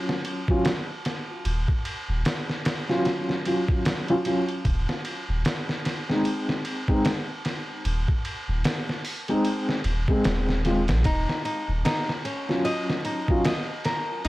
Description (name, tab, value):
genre	trip hop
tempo	75 BPM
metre	4/4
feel	swing 58% on 16ths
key	Eb dorian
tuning	A4 = 439 Hz
part	felt-muted upright piano	accompaniment	0.0-13.5 s	Gb3 to Ab4	-26 LUFS	equal	tremolo, tape echo
part	trip hop sampler-style drum kit	drums	0.1-14.3 s	hi-hat, kick drum, ride cymbal, snare drum	-27 LUFS	equal	none
part	soft dub sub bass	bass	1.4-14.3 s	Eb1 to Bb1	-25 LUFS	equal	none
part	nylon-string guitar	arpeggios	11.1-14.3 s	Db4 to Eb5	-29 LUFS	left 1 dB	tape echo
room	little or no reverb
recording	dry, gritty hardware recording, vinyl crackle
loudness	-23 LUFS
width	side -18 dB against mid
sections	0.0-14.3 A section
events	none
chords	0.0 Ebm7 (rootless); 4.7 Fm7/Eb (rootless); 11.1 Ebm7